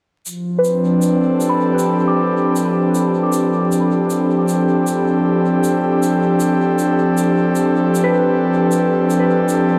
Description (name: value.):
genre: ambient dub.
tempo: 78 BPM.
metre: 4/4.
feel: swing 57% on 16ths.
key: G mixolydian.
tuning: A4 = 442 Hz.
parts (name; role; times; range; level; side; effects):
airy breathy pad; sustained chords; 0.3-9.8 s; F3 to A4; -17 LUFS; equal; chorus.
shaker; drums; 0.3-9.7 s; none; -34 LUFS; equal; none.
soft synth bell; arpeggios; 0.6-9.8 s; B4 to D6; -24 LUFS; equal; chorus, low-pass filter, tape echo.
room: wet echo chamber reverb, RT60 2.5 s.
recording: vinyl crackle.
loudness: -16 LUFS.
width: mono.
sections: 0.3-9.8 A section.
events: filter sweep on synth bell 0.3-9.8.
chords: 0.3 G9sus4.